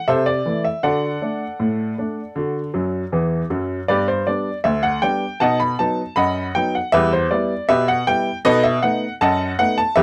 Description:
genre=ragtime piano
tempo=79 BPM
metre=2/4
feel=straight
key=unclear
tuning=A4 = 440 Hz
part: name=clear upright piano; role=solo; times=0.0-10.0 s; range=D2 to B5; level=-20 LUFS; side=equal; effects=none
room=little or no reverb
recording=none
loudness=-20 LUFS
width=mono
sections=0.0-10.0 A section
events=upright piano fill 2.7-3.9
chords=0.0 Am/C; 0.8 D; 3.9 G; 5.4 B; 6.9 Em; 8.4 B7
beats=0.06 | 0.82 1.59 | 2.35 3.12 | 3.88 4.64 | 5.40 6.16 | 6.92 7.68 | 8.43 9.19 | 9.94

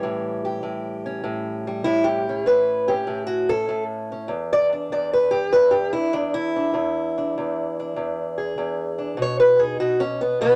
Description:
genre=acoustic country blues, solo or duo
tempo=98 BPM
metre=4/4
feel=swing 68% on 8ths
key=unclear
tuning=A4 = 440 Hz
part: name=fingerpicked acoustic archtop guitar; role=solo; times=0.0-10.6 s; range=E2 to D5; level=-22 LUFS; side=equal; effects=none
room=wet studio ambience, RT60 0.5 s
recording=none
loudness=-23 LUFS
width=mono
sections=0.0-10.6 A section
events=steel-string acoustic guitar solo 0.0-10.6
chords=0.0 A7; 4.3 E7; 9.2 B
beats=0.02 0.64 1.25 | 1.86 2.47 3.08 3.69 | 4.30 4.92 5.53 6.14 | 6.75 7.36 7.97 8.58 | 9.19 9.80 10.40

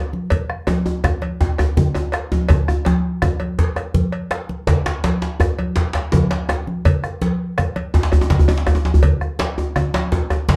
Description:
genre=west african traditional, West African drum ensemble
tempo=110 BPM (dotted quarters)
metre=12/8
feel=straight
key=none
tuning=none
part: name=congas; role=percussion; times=0.1-10.6 s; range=none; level=-24 LUFS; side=equal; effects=none
part: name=djembe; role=percussion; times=0.1-10.6 s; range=none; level=-26 LUFS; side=equal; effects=none
part: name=bombo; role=percussion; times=0.3-10.5 s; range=none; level=-23 LUFS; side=equal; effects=none
part: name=cowbell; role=percussion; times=0.3-10.5 s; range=none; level=-31 LUFS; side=equal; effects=none
part: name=djembe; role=percussion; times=0.7-10.6 s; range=none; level=-22 LUFS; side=equal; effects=none
room=wet small room reverb, RT60 0.6 s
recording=dark, warm production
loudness=-19 LUFS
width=mono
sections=0.0-10.6 A section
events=none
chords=none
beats=| 0.32 0.86 1.41 1.95 | 2.50 3.04 3.59 4.13 | 4.68 5.22 5.77 6.31 | 6.86 7.40 7.95 8.49 | 9.04 9.58 10.13

